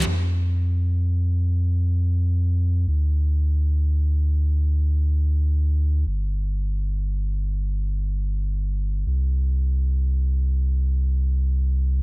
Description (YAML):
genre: future bass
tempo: free time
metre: none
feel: none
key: unclear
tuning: A4 = 441 Hz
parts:
  - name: saturated sub bass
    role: bass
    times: 0.0-12.0 s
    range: G1 to F2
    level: -20 LUFS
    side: equal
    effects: none
room: little or no reverb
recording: none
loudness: -20 LUFS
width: side -29 dB against mid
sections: 0.1-12.0 A section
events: none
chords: none